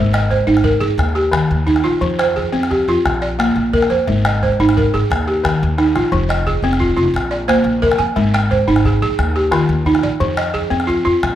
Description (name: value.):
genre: west african traditional, West African string and xylophone music.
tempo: 117 BPM (dotted quarters).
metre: 12/8.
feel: straight.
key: F dorian.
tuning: A4 = 438 Hz.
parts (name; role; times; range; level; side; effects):
balafon; arpeggios; 0.0-11.4 s; Eb3 to Ab5; -15 LUFS; right 1 dB; none.
upright bass; bass; 0.0-11.4 s; F1 to F2; -20 LUFS; left 1 dB; none.
calabash; percussion; 0.1-11.4 s; none; -22 LUFS; left 2 dB; none.
room: moderate recital hall reverb, RT60 1.8 s.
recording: none.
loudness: -13 LUFS.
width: side -11 dB against mid.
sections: 0.0-6.1 A section; 6.1-11.4 B section.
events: drum fill 5.6-6.1.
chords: 0.0 Ab; 1.0 Eb; 2.0 Fm; 3.1 Bb; 4.1 Ab; 5.1 Eb; 6.1 Fm; 7.1 Bb; 8.2 Ab; 9.2 Eb; 10.2 Fm.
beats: 0.48 0.99 1.51 | 2.02 2.54 3.05 3.56 | 4.08 4.59 5.10 5.62 | 6.13 6.64 7.15 7.66 | 8.17 8.68 9.19 9.70 | 10.21 10.72 11.24.